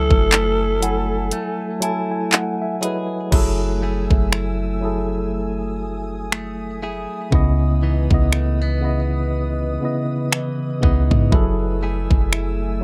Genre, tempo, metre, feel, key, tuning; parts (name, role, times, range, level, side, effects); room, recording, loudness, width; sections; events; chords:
contemporary R&B; 60 BPM; 4/4; swing 58% on 16ths; F# dorian; A4 = 440 Hz
breathy alto saxophone; melody; 0.0-2.3 s; A4; -25 LUFS; equal; digital delay
mellow tine electric piano; accompaniment; 0.0-12.8 s; C#3 to A5; -26 LUFS; equal
glassy FM pad; sustained chords; 0.1-12.8 s; A3 to E6; -34 LUFS; equal; ensemble chorus, built-in reverb
direct-recorded clean electric guitar; arpeggios; 0.0-12.8 s; C#3 to G#4; -32 LUFS; equal; digital delay
warm 808-style bass; bass; 0.0-12.8 s; F#1 to G#2; -24 LUFS; equal
small celesta; texture; 0.0-2.8 s; C#5 to F#5; -36 LUFS; equal; digital delay
smooth R&B drum kit; drums; 0.1-12.6 s; crash cymbal, finger snaps, handclaps, hi-hat, kick drum; -19 LUFS; equal
little or no reverb; -20 LUFS; mono
0.0-3.3 A section; 3.3-12.8 B section
break 1.3-3.3; tine electric piano fill 1.3-3.3; hi-hats muted 3.3-12.8
0.0 F#m9; 7.3 C#m9; 11.3 F#m9